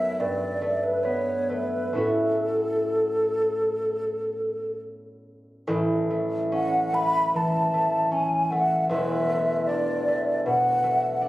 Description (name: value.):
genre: classical, impressionist duo for flute and harp.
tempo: 60-80 BPM.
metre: 4/4.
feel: rubato.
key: A major.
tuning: A4 = 440 Hz.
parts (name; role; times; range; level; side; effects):
mellow hollow concert flute; melody; 0.0-11.3 s; A4 to B5; -24 LUFS; equal; none.
concert harp; accompaniment; 0.0-11.3 s; E1 to F#4; -26 LUFS; equal; none.
room: moderate recital hall reverb, RT60 1.8 s.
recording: recorded on a phone in the room, club reverb.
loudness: -22 LUFS.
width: side -16 dB against mid.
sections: 0.0-5.7 A section; 5.7-11.3 B section.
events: none.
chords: 0.2 Gadd9; 2.0 A6; 8.9 E11.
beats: 0.19 1.04 | 1.98 2.96 3.89 4.79 | 5.69 6.54 7.35 8.13 | 8.90 9.68 10.46 11.21.